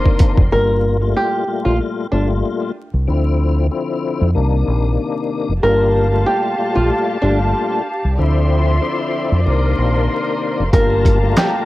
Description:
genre	hip hop, boom-bap hip-hop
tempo	94 BPM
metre	4/4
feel	swing 55% on 16ths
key	G minor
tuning	A4 = 440 Hz
part	tonewheel organ	accompaniment	0.0-11.7 s	Bb2 to F4	-21 LUFS	left 5 dB	chorus vibrato, slow rotary speaker, cassette tape, high-pass filter, low-pass filter
part	warm studio string section	sustained chords	0.0-0.5, 5.6-11.7 s	F3 to C6	-22 LUFS	equal	high-pass filter, low-pass filter, cassette tape
part	boom bap sampler-style drum kit	drums	0.1-0.5, 10.7-11.5 s	handclaps, hi-hat, kick drum, snare drum	-14 LUFS	equal	cassette tape
part	deep dub fingered electric bass	bass	0.4-11.3 s	F1 to F2	-16 LUFS	equal	tube saturation
part	flamenco guitar	melody	0.5-11.7 s	D4 to Bb4	-18 LUFS	right 1 dB	high-pass filter, low-pass filter, cassette tape
room	light reverb, digital ambience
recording	home recording on cassette, vinyl crackle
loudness	-14 LUFS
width	side -17 dB against mid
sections	0.5-10.7 A section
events	drum fill 0.0-0.5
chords	0.0 Cm9; 0.5 Gm9; 3.1 Dm9; 4.4 Cm9; 5.6 Gm9; 8.2 Dm9; 9.5 Cm9; 10.7 Gm9

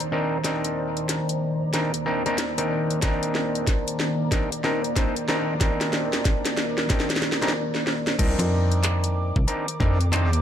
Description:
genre	glitch hop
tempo	93 BPM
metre	4/4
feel	swing 62% on 16ths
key	C minor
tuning	A4 = 445 Hz
part	dark analog pad	sustained chords	0.0-10.4 s	Eb3 to D6	-29 LUFS	equal	chorus, sidechain pumping
part	drum and bass drum kit	drums	0.0-10.4 s	crash cymbal, handclaps, hi-hat, snare drum	-27 LUFS	equal	none
part	ethereal airy pad	texture	0.0-10.4 s	Eb3 to D6	-34 LUFS	left 1 dB	ensemble chorus, built-in reverb, sidechain pumping
part	auto-wah clav	stabs	0.1-10.3 s	C4 to C5	-27 LUFS	equal	overdrive, sidechain pumping, digital delay
part	electronic kick drum	drums	3.0-10.0 s	none	-23 LUFS	equal	none
part	wobble bass	bass	8.2-10.4 s	C2 to F2	-21 LUFS	equal	chorus, tube saturation
part	slap-like FM bass	bass	8.4-9.5 s	C2 to F2	-22 LUFS	equal	tube saturation
room	light reverb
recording	none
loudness	-21 LUFS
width	side -9 dB against mid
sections	0.0-8.2 A section; 8.2-10.4 B section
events	build-up 0.0-8.2; drum fill 0.0-7.5, 7.7-8.2; break 7.5-8.2; drop 8.2-10.4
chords	0.0 Cm9

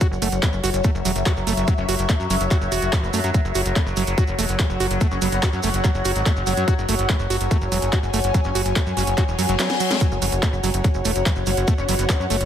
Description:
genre	psychedelic trance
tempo	144 BPM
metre	4/4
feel	straight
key	unclear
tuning	A4 = 441 Hz
part	overtone-sweeping drone	sustained chords	0.0-12.5 s	F#3	-28 LUFS	left 1 dB	chorus, built-in reverb, phaser, sidechain pumping
part	overdriven acid bass	riff	0.0-12.4 s	E3 to F#4	-28 LUFS	right 3 dB	distortion, auto-pan, sidechain pumping, tape echo
part	drum and bass drum kit	drums	0.0-12.5 s	handclaps, hi-hat, snare drum	-27 LUFS	right 1 dB	overdrive
part	electronic kick drum	drums	0.0-12.2 s	none	-19 LUFS	equal	overdrive
part	maracas	percussion	0.0-12.5 s	none	-34 LUFS	right 4 dB	none
part	airy breathy pad	texture	0.0-12.5 s	F#4 to G#5	-28 LUFS	left 2 dB	chorus, sidechain pumping
part	plucky analog bass	bass	0.1-12.5 s	E1 to F#2	-24 LUFS	equal	none
part	metallic wobble bass	second line	0.4-12.3 s	B3 to C#4	-36 LUFS	left 3 dB	none
part	reverse cymbal	sound effects	9.3-10.0 s	none	-31 LUFS	left 8 dB	none
room	light reverb, digital ambience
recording	dense, heavily limited modern master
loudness	-18 LUFS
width	side -10 dB against mid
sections	0.0-12.5 A section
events	reverse cymbal 9.3-10.0; kick drops out 9.6-10.0; drum fill 9.6-10.0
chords	0.0 F#5

